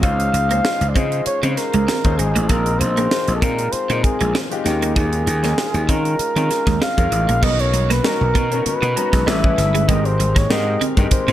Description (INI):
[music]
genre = polished 1980s jazz-funk pop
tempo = 97 BPM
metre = 4/4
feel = swing 54% on 16ths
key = unclear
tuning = A4 = 439 Hz
[part]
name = mellow flugelhorn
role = melody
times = 0.0-11.3 s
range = G4 to F5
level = -22 LUFS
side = right 1 dB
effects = none
[part]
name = clear grand piano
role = accompaniment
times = 0.0-11.3 s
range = Ab3 to A#5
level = -24 LUFS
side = left 6 dB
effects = analog chorus
[part]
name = clean electric guitar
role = riff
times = 0.0-11.3 s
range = Ab3 to Eb4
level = -25 LUFS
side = right 4 dB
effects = ensemble chorus
[part]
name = gritty slap bass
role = bass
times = 0.0-11.3 s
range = G1 to Eb3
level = -20 LUFS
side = equal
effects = overdrive
[part]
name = crisp fusion drum kit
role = drums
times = 0.0-11.3 s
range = crash cymbal, hi-hat, kick drum, snare drum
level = -21 LUFS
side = equal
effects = none
[part]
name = congas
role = percussion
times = 7.4-11.0 s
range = none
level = -32 LUFS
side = left 2 dB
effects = none
[sound]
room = studio ambience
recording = none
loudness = -15 LUFS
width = side -12 dB against mid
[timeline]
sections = 0.0-7.4 A section; 7.4-11.3 B section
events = none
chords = 0.0 Dbmaj7; 2.5 Bb9sus4; 4.7 Eb7sus4; 7.4 Bmaj7; 9.3 Amaj9; 9.9 Abmaj9